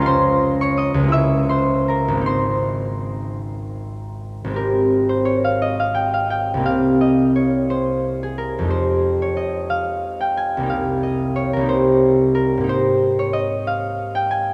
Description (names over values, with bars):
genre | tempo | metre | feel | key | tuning
classical, solo harp piece | 50-62 BPM (dotted quarters) | 6/8 | rubato | Ab major | A4 = 440 Hz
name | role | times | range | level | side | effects
concert harp | solo | 0.0-14.5 s | Ab1 to C7 | -20 LUFS | equal | none
room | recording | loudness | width
wet cathedral reverb, RT60 4.8 s | none | -19 LUFS | mono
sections
0.0-4.6 A section; 4.6-14.5 B section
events
none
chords
0.1 Dbmaj7; 1.1 Dbm6; 2.3 Abadd9; 4.6 Abmaj9; 6.7 Cm7; 12.7 Abmaj9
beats
| 0.06 1.13 | 2.26 3.40 | 4.56 5.62 | 6.66 7.70 | 8.71 9.71 | 10.70 11.70 | 12.69 13.66